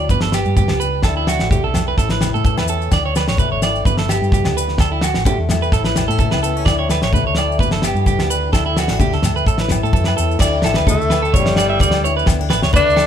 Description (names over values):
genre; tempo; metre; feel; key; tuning
highlife guitar band; 128 BPM; 4/4; straight; unclear; A4 = 440 Hz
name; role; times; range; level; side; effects
fingerpicked swing-style acoustic guitar; accompaniment; 0.0-13.1 s; G2 to E4; -26 LUFS; left 7 dB; none
electric guitar at the edge of break-up; arpeggios; 0.0-13.1 s; E4 to E5; -20 LUFS; right 5 dB; none
hollow-body short-scale fingered electric bass; bass; 0.0-13.1 s; G1 to A2; -21 LUFS; equal; none
damped 70s drum kit; drums; 0.1-13.1 s; crash cymbal, kick drum, snare drum; -18 LUFS; equal; none
congas; percussion; 0.1-12.8 s; none; -24 LUFS; left 3 dB; none
maracas; percussion; 0.1-13.1 s; none; -31 LUFS; left 7 dB; none
agogo bells; percussion; 0.3-13.1 s; none; -30 LUFS; left 8 dB; none
raspy tenor saxophone; melody; 10.9-13.1 s; G3 to D4; -17 LUFS; left 2 dB; none
room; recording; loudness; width
light reverb; band playing live in one room; -14 LUFS; side -9 dB against mid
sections
0.0-10.4 A section; 10.4-13.1 B section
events
tenor saxophone solo 10.4-13.1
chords
0.1 G; 1.0 Dsus2; 2.0 A; 2.9 Dsus2; 3.9 G6; 4.8 Dsus2; 5.7 A; 6.7 Dsus2; 7.6 G6; 8.5 Dsus2; 9.5 A; 10.4 Dsus2; 11.3 G6; 12.3 Dsus2